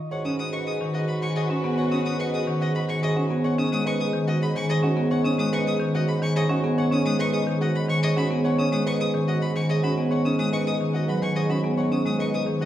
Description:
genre	classical, minimalist pattern music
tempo	108 BPM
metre	3/4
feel	straight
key	G# minor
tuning	A4 = 441 Hz
part	concert harp	melody	0.0-12.7 s	C#5 to C#6	-34 LUFS	left 7 dB	none
part	warm concert grand piano	arpeggios	0.0-12.7 s	C#4 to D#5	-31 LUFS	right 4 dB	none
part	dark soprano saxophone	second line	0.1-3.3 s	F#4	-35 LUFS	right 2 dB	none
part	rich symphonic string section	sustained chords	0.1-3.3 s	F#4 to B4	-37 LUFS	left 2 dB	none
part	warm violin	arpeggios	0.1-12.7 s	D#5 to D#6	-32 LUFS	left 2 dB	none
part	warm bassoon	bass	0.1-12.7 s	G#2	-30 LUFS	equal	none
part	marimba with medium hard mallets	accompaniment	0.3-12.7 s	D#3 to C#4	-24 LUFS	equal	none
room	wet recital hall reverb, RT60 1.7 s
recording	heard from further back in the room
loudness	-21 LUFS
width	side -12 dB against mid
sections	0.1-12.7 A section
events	none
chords	0.1 G#m7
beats	| 0.11 0.67 1.22 | 1.78 2.33 2.89 | 3.45 4.00 4.56 | 5.11 5.67 6.22 | 6.78 7.33 7.89 | 8.45 9.00 9.56 | 10.11 10.67 11.22 | 11.78 12.34

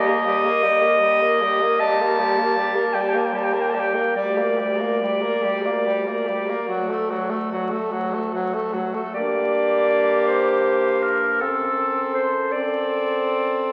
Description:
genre	classical, lyrical piece for single-reed quartet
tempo	47-55 BPM (dotted quarters)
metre	12/8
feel	rubato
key	G minor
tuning	A4 = 440 Hz
part	clear clarinet	melody	0.0-13.7 s	A4 to A5	-24 LUFS	equal	none
part	clear alto saxophone	second line	0.0-13.7 s	F#4 to Bb4	-29 LUFS	equal	none
part	clear tenor saxophone	accompaniment	0.0-13.7 s	F#3 to C4	-27 LUFS	equal	none
part	warm bass clarinet	bass	0.0-13.7 s	D2 to G2	-32 LUFS	equal	none
room	wet scoring stage reverb, RT60 1.6 s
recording	very old 78 rpm record, vinyl crackle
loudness	-21 LUFS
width	mono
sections	0.0-9.1 A section; 9.1-13.7 B section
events	none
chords	0.0 Eb; 4.2 Gm/D; 6.7 D; 9.1 Gm; 11.4 D7/F#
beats	0.62 1.80 2.94 | 4.17 5.43 6.68 7.92 | 9.14 10.27 11.40 12.53

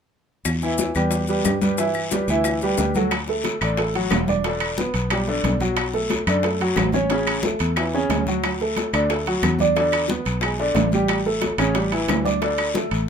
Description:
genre	latin, salsa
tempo	180 BPM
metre	4/4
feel	straight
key	D major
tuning	A4 = 440 Hz
part	fingered electric bass	bass	0.5-13.1 s	E1 to G2	-25 LUFS	equal	none
part	bongos	percussion	0.5-12.9 s	none	-30 LUFS	left 6 dB	none
part	claves	percussion	0.5-12.8 s	none	-30 LUFS	left 6 dB	none
part	congas	percussion	0.5-12.9 s	none	-29 LUFS	left 1 dB	none
part	guiro	percussion	0.5-13.1 s	none	-34 LUFS	left 5 dB	none
part	maracas	percussion	0.5-3.1 s	none	-31 LUFS	left 7 dB	none
part	bright upright piano	accompaniment	0.6-13.0 s	C#3 to E5	-22 LUFS	right 1 dB	none
part	timbales	percussion	3.1-13.1 s	none	-28 LUFS	right 5 dB	none
room	moderate small room reverb, RT60 0.5 s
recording	minimal, uncompressed stereo recording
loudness	-19 LUFS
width	side -7 dB against mid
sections	0.5-3.1 A section; 3.1-13.1 B section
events	none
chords	0.5 Em; 1.8 G6; 3.1 D; 4.4 Em7; 5.8 Bm7; 7.1 A; 8.4 D; 9.8 E7; 11.1 A7; 11.8 A5; 12.4 D5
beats	| 0.46 0.79 1.12 1.45 | 1.78 2.12 2.45 2.78 | 3.11 3.45 3.78 4.11 | 4.44 4.78 5.11 5.44 | 5.77 6.11 6.44 6.77 | 7.10 7.44 7.77 8.10 | 8.43 8.77 9.10 9.43 | 9.76 10.10 10.43 10.76 | 11.09 11.42 11.76 12.09 | 12.42 12.75 13.08

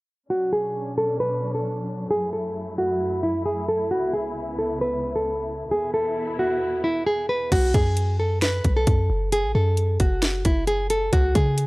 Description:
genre	hip hop, trap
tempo	133 BPM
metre	4/4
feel	half-time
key	unclear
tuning	A4 = 440 Hz
part	nylon-string guitar	melody	0.3-11.7 s	E4 to B4	-23 LUFS	equal	low-pass filter
part	dark studio string section	sustained chords	0.3-7.5 s	C#2 to E4	-31 LUFS	left 1 dB	none
part	clean 808-style bass	bass	7.5-11.7 s	F#1 to C#3	-23 LUFS	equal	none
part	trap drum kit	drums	7.5-11.7 s	crash cymbal, finger snaps, hi-hat, kick drum, snare drum	-22 LUFS	equal	none
room	little or no reverb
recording	dry, gritty hardware recording, cassette tape, low-pass filter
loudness	-21 LUFS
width	side -23 dB against mid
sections	0.3-7.5 A section; 7.5-11.7 B section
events	filter sweep 0.3-7.5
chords	0.3 Bmadd9; 2.1 F#m7; 3.9 C#m7; 5.7 E5; 7.5 B5; 9.3 F#m; 11.1 C#5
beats	| 0.30 0.75 1.20 1.65 | 2.10 2.56 3.01 3.46 | 3.91 4.36 4.81 5.26 | 5.71 6.17 6.62 7.07 | 7.52 7.97 8.42 8.87 | 9.32 9.77 10.22 10.68 | 11.13 11.58

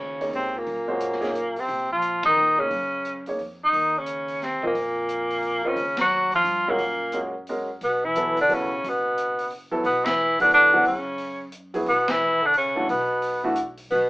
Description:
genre	modal jazz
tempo	177 BPM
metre	3/4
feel	swing 63% on 8ths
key	Eb dorian, B minor from 7.8 s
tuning	A4 = 440 Hz
part	breathy tenor saxophone	melody	0.0-14.1 s	Bb3 to Gb4	-21 LUFS	equal	none
part	clear bass clarinet	second line	0.0-14.1 s	Bb2 to Gb3	-32 LUFS	left 1 dB	none
part	upright bass	bass	0.0-14.1 s	F#1 to Bb2	-44 LUFS	equal	none
part	warm concert grand piano	accompaniment	0.2-13.6 s	E3 to Eb5	-26 LUFS	equal	none
part	open jazz drum kit	drums	0.2-14.0 s	hi-hat, kick drum, ride cymbal, snare drum	-38 LUFS	equal	none
room	moderate studio ambience, RT60 0.5 s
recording	band playing live in one room, AM radio sound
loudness	-21 LUFS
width	side -23 dB against mid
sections	0.0-7.8 A section; 7.8-14.1 B section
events	band accent 2.2, 5.9, 10.0, 12.0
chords	0.0 Ebm7; 3.7 Bbm/Eb; 6.8 Gb; 7.8 Bm7; 11.9 C#m/B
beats	0.00 0.34 | 0.68 1.02 1.36 | 1.70 2.04 2.38 | 2.72 3.06 3.40 | 3.74 4.08 4.42 | 4.76 5.10 5.44 | 5.78 6.12 6.46 | 6.79 7.13 7.47 | 7.81 8.15 8.49 | 8.83 9.17 9.51 | 9.85 10.18 10.52 | 10.86 11.20 11.54 | 11.88 12.21 12.55 | 12.89 13.23 13.56 | 13.90

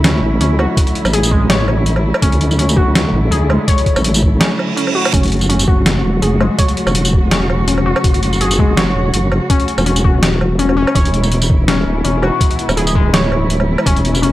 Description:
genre	half-time drum and bass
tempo	165 BPM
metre	4/4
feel	swing 54% on 16ths, half-time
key	unclear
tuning	A4 = 439 Hz
part	dark studio cello section	sustained chords	0.0-14.3 s	B2 to F#4	-20 LUFS	equal	sidechain pumping
part	warbly dusty pluck	arpeggios	0.0-14.3 s	G#3 to C#5	-19 LUFS	left 2 dB	chorus, tape echo
part	deep soft wobble bass	bass	0.0-14.3 s	D1 to D2	-16 LUFS	equal	chorus
part	boom bap sampler-style drum kit	drums	0.0-14.3 s	hi-hat, snare drum, tambourine, woodblock	-18 LUFS	equal	none
part	electronic kick drum	drums	0.8-13.9 s	none	-14 LUFS	equal	none
part	reverse cymbal	sound effects	4.5-5.1 s	none	-20 LUFS	right 6 dB	none
room	light reverb, digital ambience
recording	dry, gritty hardware recording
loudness	-11 LUFS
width	side -15 dB against mid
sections	0.0-14.3 A section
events	reverse cymbal 4.5-5.1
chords	0.0 Dadd9; 5.1 F#m; 11.0 E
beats	0.04 0.41 | 0.77 1.13 1.50 1.86 | 2.23 2.59 2.95 3.32 | 3.68 4.04 4.41 4.77 | 5.13 5.50 5.86 6.22 | 6.59 6.95 7.32 7.68 | 8.04 8.41 8.77 9.13 | 9.50 9.86 10.22 10.59 | 10.95 11.32 11.68 12.04 | 12.41 12.77 13.13 13.50 | 13.86 14.22

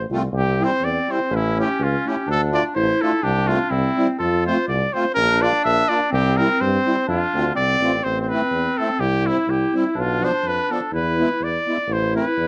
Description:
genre	alpine folk, alpine dance band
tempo	125 BPM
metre	2/4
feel	straight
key	F major, A minor from 8.0 s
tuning	A4 = 440 Hz
part	clear trumpet	melody	0.0-12.5 s	E4 to E5	-24 LUFS	equal	none
part	warm tuba	bass	0.0-12.5 s	A1 to G2	-26 LUFS	equal	none
part	musette accordion	accompaniment	0.1-12.3 s	F3 to F4	-26 LUFS	equal	none
part	warm clarinet	second line	0.3-12.5 s	C4 to F4	-26 LUFS	equal	none
room	moderate studio reverb, RT60 0.5 s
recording	none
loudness	-20 LUFS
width	mono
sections	0.0-8.0 A section; 8.0-12.5 B section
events	none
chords	0.3 C; 1.3 A; 2.3 Dm; 3.2 F/C; 3.7 C; 4.2 F; 5.2 Bb; 6.1 C; 7.1 F; 8.0 Am; 9.0 C; 10.0 Bdim; 10.9 E; 11.9 Am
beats	| 0.35 0.83 | 1.32 1.80 | 2.28 2.76 | 3.24 3.72 | 4.20 4.68 | 5.17 5.65 | 6.12 6.60 | 7.08 7.56 | 8.04 8.53 | 9.01 9.49 | 9.97 10.45 | 10.93 11.41 | 11.89 12.37

